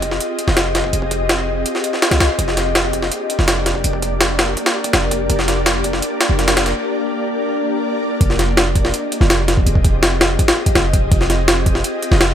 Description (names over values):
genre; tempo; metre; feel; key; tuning
drum and bass, jungle; 165 BPM; 4/4; straight; F dorian; A4 = 440 Hz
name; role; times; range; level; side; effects
warm 808-style bass; bass; 0.0-12.3 s; F1 to C2; -19 LUFS; equal; tube saturation
jungle sampler-style drum kit; drums; 0.0-12.3 s; hi-hat, kick drum, snare drum; -16 LUFS; equal; overdrive, high-pass filter on snare, high-pass filter on hats, high-pass filter on kick
room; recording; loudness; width
light reverb; none; -14 LUFS; side -9 dB against mid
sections
0.0-8.2 A section; 8.2-12.3 B section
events
build-up 0.0-8.2; break 6.8-8.2; drop 8.2-12.3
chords
none